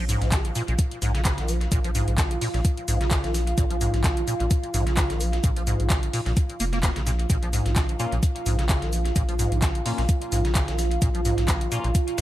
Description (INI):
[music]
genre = acid house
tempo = 129 BPM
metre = 4/4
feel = swing 55% on 16ths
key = Bb minor pentatonic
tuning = A4 = 439 Hz
[part]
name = dark analog pad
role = sustained chords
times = 0.0-12.2 s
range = F4 to F5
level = -31 LUFS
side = right 2 dB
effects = chorus, sidechain pumping
[part]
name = acid bass, square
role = riff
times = 0.0-12.2 s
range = Ab2 to Bb3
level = -29 LUFS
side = equal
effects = ensemble chorus, dub echo
[part]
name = saturated sub bass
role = bass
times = 0.0-12.2 s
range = F1 to Bb1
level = -26 LUFS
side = equal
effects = tube saturation, sidechain pumping
[part]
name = booming analog drum machine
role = drums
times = 0.1-12.2 s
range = handclaps, hi-hat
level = -31 LUFS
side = left 1 dB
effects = none
[part]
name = dusty soul sampler-style drum kit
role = drums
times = 0.1-12.2 s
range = hi-hat, shaker, snare drum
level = -37 LUFS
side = right 1 dB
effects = high-pass filter on perc, high-pass filter on snare, high-pass filter on hats, high-pass filter on room, dub echo
[part]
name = electronic kick drum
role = drums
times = 0.3-12.1 s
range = none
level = -22 LUFS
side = equal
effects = overdrive
[part]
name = band-passed chord stab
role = stabs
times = 8.0-11.9 s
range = Bb3 to F4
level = -35 LUFS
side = left 4 dB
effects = phaser, dub echo
[sound]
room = digital ambience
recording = echo-heavy mix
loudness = -21 LUFS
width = side -14 dB against mid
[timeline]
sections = 0.0-12.2 A section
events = filter sweep on acid bass 0.0-12.2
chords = 0.0 Bbm